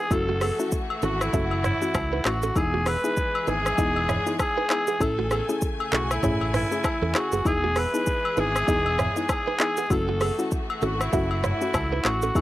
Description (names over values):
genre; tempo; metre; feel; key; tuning
afrobeats; 98 BPM; 4/4; swing 58% on 16ths; unclear; A4 = 440 Hz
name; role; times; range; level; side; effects
growling alto saxophone; melody; 0.0-12.4 s; E4 to B4; -27 LUFS; equal; tape echo
soft round pluck; accompaniment; 0.0-12.4 s; A3 to A4; -30 LUFS; left 2 dB; chorus
clear studio string section; sustained chords; 0.0-12.4 s; C#3 to G#5; -34 LUFS; left 2 dB; sidechain pumping
direct-recorded clean electric guitar; riff; 0.0-12.3 s; A3 to E5; -32 LUFS; right 7 dB; spring reverb
fingered electric bass; bass; 0.1-12.4 s; E1 to E2; -28 LUFS; equal; none
afro-pop drum kit; drums; 0.1-12.4 s; handclaps, hi-hat, kick drum, rim click, shaker, toms; -28 LUFS; equal; none
agogo bells and woodblock; percussion; 0.1-12.4 s; none; -33 LUFS; left 4 dB; none
room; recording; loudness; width
little or no reverb; dry, gritty hardware recording; -22 LUFS; side -15 dB against mid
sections
0.0-12.4 A section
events
none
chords
0.1 F#m7; 2.6 Emaj7; 5.0 Amaj7; 7.5 Emaj7; 9.9 F#m7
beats
| 0.11 0.72 1.33 1.95 | 2.56 3.17 3.78 4.39 | 5.01 5.62 6.23 6.84 | 7.46 8.07 8.68 9.29 | 9.90 10.52 11.13 11.74 | 12.35